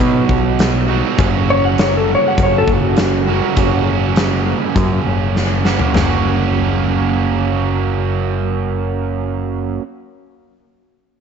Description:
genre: classic rock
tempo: 101 BPM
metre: 4/4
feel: straight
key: F# major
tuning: A4 = 442 Hz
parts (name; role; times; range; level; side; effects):
- distorted electric guitar; riff; 0.0-9.8 s; F#2 to F#4; -18 LUFS; right 11 dB; distortion
- growling picked electric bass; bass; 0.0-9.8 s; F#1 to B2; -18 LUFS; left 2 dB; overdrive
- huge arena drum kit; drums; 0.3-6.1 s; hi-hat, kick drum, snare drum, toms; -18 LUFS; left 2 dB; none
- clean lap steel guitar; melody; 1.5-4.5 s; F#4 to F#5; -18 LUFS; left 3 dB; tape echo
room: light reverb, small room ambience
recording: 1960s-style stereo, nothing above 7.9 kHz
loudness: -13 LUFS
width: side -6 dB against mid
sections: 0.0-6.0 A section; 6.0-8.3 B section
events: electric slide guitar solo 0.0-6.0; drum fill 5.4-6.0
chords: 0.0 B; 1.2 F#

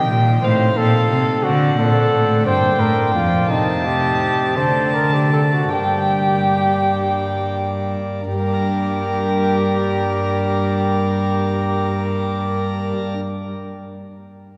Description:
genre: classical, baroque-style sonata movement with continuo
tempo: 44-59 BPM (dotted quarters)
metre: 6/8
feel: straight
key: G minor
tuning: A4 = 437 Hz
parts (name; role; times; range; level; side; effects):
- mellow trumpet; melody; 0.0-12.9 s; Eb4 to C5; -24 LUFS; equal; none
- dark violin; second line; 0.0-12.9 s; Bb4 to A5; -26 LUFS; equal; none
- chamber organ, principal chorus; accompaniment; 0.0-13.2 s; F2 to Bb4; -25 LUFS; equal; none
- rich cello; bass; 0.0-12.9 s; F2 to D3; -23 LUFS; equal; none
room: wet cathedral reverb, RT60 4.2 s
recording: recorded in a church or concert hall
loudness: -18 LUFS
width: mono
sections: 0.0-8.3 A section; 8.3-13.7 B section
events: slowing down 2.5-8.3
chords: 0.4 Adim; 1.4 D7; 2.5 Gm; 3.5 Adim/C; 4.6 D5; 5.7 Gm

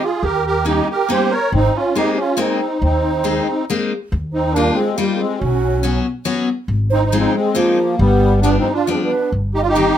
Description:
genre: musette waltz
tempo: 139 BPM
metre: 3/4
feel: rubato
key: Ab major, Eb major from 4.1 s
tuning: A4 = 441 Hz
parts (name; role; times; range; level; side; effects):
- musette accordion; melody; 0.0-10.0 s; F3 to Db5; -18 LUFS; equal; plate reverb
- mellow hollow concert flute; second line; 0.0-10.0 s; F4 to Bb5; -22 LUFS; right 5 dB; none
- picked steel-string acoustic guitar; accompaniment; 0.0-10.0 s; Eb3 to F#4; -20 LUFS; left 4 dB; none
- upright bass; bass; 0.2-9.9 s; G1 to Eb2; -18 LUFS; equal; none
room: moderate studio reverb, RT60 0.5 s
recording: none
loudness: -15 LUFS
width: side -10 dB against mid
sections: 0.0-4.1 A section; 4.1-10.0 B section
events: none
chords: 0.2 Eb7; 1.5 Abadd9; 4.1 Ebadd9; 5.4 Bsus2; 6.7 Ab6; 8.0 G7; 9.3 Cm/G

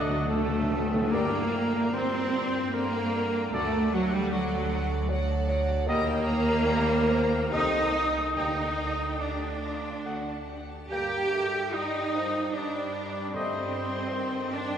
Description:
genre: classical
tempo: 66-78 BPM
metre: 3/4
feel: rubato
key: G minor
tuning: A4 = 440 Hz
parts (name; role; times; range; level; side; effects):
- rich symphonic violin section; melody; 0.0-14.8 s; D5 to Bb5; -44 LUFS; left 4 dB; none
- clear clarinet; second line; 0.0-14.8 s; F#4 to G5; -36 LUFS; equal; none
- warm symphonic violin section; second line; 0.0-14.8 s; D4 to G5; -43 LUFS; left 1 dB; none
- mellow bassoon; accompaniment; 0.0-14.8 s; Bb2 to Bb3; -36 LUFS; right 2 dB; none
- rich symphonic viola section; accompaniment; 0.0-14.8 s; D3 to G4; -35 LUFS; right 1 dB; none
- bright trombone section; sustained chords; 0.0-13.6 s; Bb2 to C4; -44 LUFS; right 1 dB; none
- dark French horn section; sustained chords; 0.0-13.6 s; A3 to D5; -41 LUFS; left 5 dB; none
- mellow trumpet; stabs; 0.0-13.6 s; F#4 to G5; -37 LUFS; left 1 dB; none
- rich symphonic cello section; bass; 0.0-14.8 s; D2 to G4; -30 LUFS; right 1 dB; none
- rich symphonic double bass section; bass; 0.0-14.8 s; C2 to G2; -34 LUFS; equal; none
- timpani; percussion; 0.0-4.7, 8.4-9.6, 13.3-14.5 s; G2 to D3; -33 LUFS; left 1 dB; none
- silver concert flute; second line; 0.3-14.8 s; F#5 to G6; -35 LUFS; left 2 dB; none
room: wet church reverb, RT60 3.3 s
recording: recorded in a church or concert hall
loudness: -25 LUFS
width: side -8 dB against mid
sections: 0.0-1.1 A section; 1.1-14.8 B section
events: timpani fill 0.0-1.1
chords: 0.0 D; 1.1 Gm; 3.5 D; 5.9 Eb; 7.5 Am7b5/C; 8.4 Gm/D; 10.0 D; 10.9 Gm; 13.3 Am7b5/G

